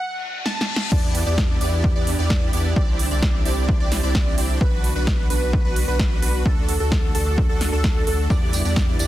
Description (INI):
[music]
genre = EDM, festival progressive house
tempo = 130 BPM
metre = 4/4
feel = straight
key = E minor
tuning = A4 = 440 Hz
[part]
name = plucky unison lead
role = melody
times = 0.0-0.9 s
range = F#5 to A5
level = -29 LUFS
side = equal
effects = digital delay
[part]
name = reverse cymbal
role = sound effects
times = 0.1-0.9 s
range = none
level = -29 LUFS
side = left 5 dB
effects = none
[part]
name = big-room dance drum kit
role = drums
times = 0.5-9.1 s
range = crash cymbal, hi-hat, snare drum, tambourine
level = -27 LUFS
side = right 1 dB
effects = overdrive
[part]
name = lush unison pad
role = sustained chords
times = 0.9-9.1 s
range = D3 to G4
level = -33 LUFS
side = equal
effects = chorus, sidechain pumping
[part]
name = plucky unison lead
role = arpeggios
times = 0.9-9.1 s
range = A4 to D5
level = -29 LUFS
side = equal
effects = analog chorus, sidechain pumping, digital delay
[part]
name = supersaw chords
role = riff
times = 0.9-9.1 s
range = B3 to D5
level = -28 LUFS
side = right 2 dB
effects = analog chorus, sidechain pumping, digital delay
[part]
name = saturated sub bass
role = bass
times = 0.9-9.1 s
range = B1 to E2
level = -23 LUFS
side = equal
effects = sidechain pumping
[part]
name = electronic kick drum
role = drums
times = 0.9-8.9 s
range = none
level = -21 LUFS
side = equal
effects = overdrive
[sound]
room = digital ambience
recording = dense, heavily limited modern master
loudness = -18 LUFS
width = side -14 dB against mid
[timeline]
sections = 0.9-9.1 A section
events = break 0.0-0.9; reverse cymbal 0.1-0.9; drum fill 0.5-0.9; drop 0.9-9.1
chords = 0.0 N.C.; 0.9 Em7; 2.8 Cadd9; 4.6 Bm; 6.5 D; 8.3 Em7